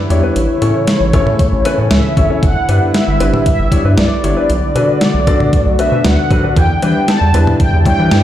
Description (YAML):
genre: synth-pop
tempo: 116 BPM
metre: 4/4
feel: straight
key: E dorian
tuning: A4 = 440 Hz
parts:
  - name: warm analog pad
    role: sustained chords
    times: 0.0-8.2 s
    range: C#3 to F#4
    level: -19 LUFS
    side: equal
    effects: chorus
  - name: mellow synth brass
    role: melody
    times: 0.1-8.2 s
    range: C#5 to A5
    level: -18 LUFS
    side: equal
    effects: chorus, ping-pong delay
  - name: warm baby grand piano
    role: accompaniment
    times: 0.1-8.2 s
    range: C#4 to D5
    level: -19 LUFS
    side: left 3 dB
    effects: none
  - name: round analog bass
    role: bass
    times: 0.1-8.2 s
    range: G1 to E3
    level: -14 LUFS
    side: equal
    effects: none
  - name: clean 12-bit digital drum machine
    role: drums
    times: 0.1-8.2 s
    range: cowbell, hi-hat, kick drum, snare drum, toms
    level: -15 LUFS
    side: equal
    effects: none
  - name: analog pluck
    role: arpeggios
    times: 6.6-8.2 s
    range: E3 to E4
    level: -22 LUFS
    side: equal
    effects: chorus
room: light reverb, digital ambience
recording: played on a big sound system in a bare room, stone room reverb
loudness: -10 LUFS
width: side -12 dB against mid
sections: 0.0-8.2 A section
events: none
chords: 0.4 A; 2.4 Em7/G; 4.5 Bm7; 6.6 Em7